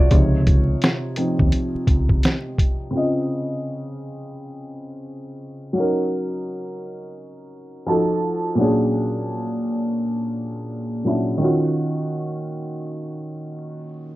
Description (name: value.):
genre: lo-fi hip hop.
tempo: 85 BPM.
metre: 4/4.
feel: swing 61% on 16ths.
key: Db major.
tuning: A4 = 440 Hz.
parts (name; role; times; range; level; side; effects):
dark upright piano; accompaniment; 0.0-14.2 s; Bb2 to A5; -22 LUFS; equal; low-pass filter.
deep dub fingered electric bass; bass; 0.0-2.2 s; Db2 to Eb2; -20 LUFS; equal; none.
lo-fi sampler-style drum kit; drums; 0.1-2.8 s; hi-hat, kick drum, snare drum; -18 LUFS; equal; none.
room: moderate small room reverb, RT60 0.5 s.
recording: rough home demo mix, vinyl crackle, low-pass filter.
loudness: -19 LUFS.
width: side -17 dB against mid.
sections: 0.0-2.9 A section; 2.9-14.2 B section.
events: upright piano solo 0.0-2.9; filter sweep 2.9-14.2; upright piano fill 7.5-8.6.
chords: 0.1 Dbmaj9; 5.8 Gb6; 7.9 F7b9; 8.6 Bb7alt; 11.4 Ebm9.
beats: | 0.11 0.82 1.52 2.23 | 2.93 3.64 4.35 5.05 | 5.76 6.46 7.17 7.88 | 8.58 9.29 9.99 10.70 | 11.40 12.11 12.82 13.52.